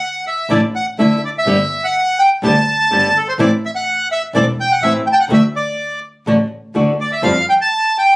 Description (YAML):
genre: tango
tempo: 125 BPM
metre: 4/4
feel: rubato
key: unclear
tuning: A4 = 440 Hz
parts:
  - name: bandoneon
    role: melody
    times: 0.0-8.2 s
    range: A4 to A5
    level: -14 LUFS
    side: equal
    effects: none
  - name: flamenco guitar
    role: accompaniment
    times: 0.5-7.3 s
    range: D3 to G4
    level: -15 LUFS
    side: equal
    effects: none
  - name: clear double bass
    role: bass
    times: 0.5-7.4 s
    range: E1 to F2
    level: -20 LUFS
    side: equal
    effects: none
room: moderate club reverb, RT60 0.7 s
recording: recorded on a phone in the room, studio ambience, compression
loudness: -13 LUFS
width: side -24 dB against mid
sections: 0.0-8.2 A section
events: none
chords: 0.0 Dsus2; 1.5 Gadd9; 3.4 Am; 5.3 D; 7.2 Fsus2